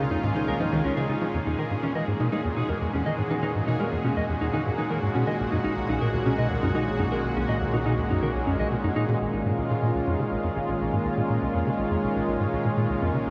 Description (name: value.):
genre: ambient, sequencer-driven space music.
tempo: 122 BPM.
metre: 4/4.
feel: straight.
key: unclear.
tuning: A4 = 440 Hz.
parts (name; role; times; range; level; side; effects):
lush unison pad; sustained chords; 0.0-13.3 s; Bb2 to Gb4; -29 LUFS; equal; chorus.
mellow electric guitar; arpeggios; 0.0-9.0 s; Eb3 to Eb5; -33 LUFS; equal; low-pass filter, tape echo.
tight sequencer bass; riff; 0.0-13.3 s; Bb1 to G#3; -31 LUFS; equal; ensemble chorus, cassette tape, tape echo.
analog drone; bass; 0.0-13.3 s; Bb1 to E2; -41 LUFS; equal; none.
bubbling stepped-filter texture; texture; 0.0-13.3 s; Ab4 to Db5; -40 LUFS; equal; chorus, built-in reverb.
room: wet huge ambient reverb, RT60 6.9 s.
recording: none.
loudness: -26 LUFS.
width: mono.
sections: 0.0-9.2 A section; 9.2-13.3 B section.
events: none.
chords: 0.0 Db; 1.3 E; 5.3 B; 9.2 Bbm7.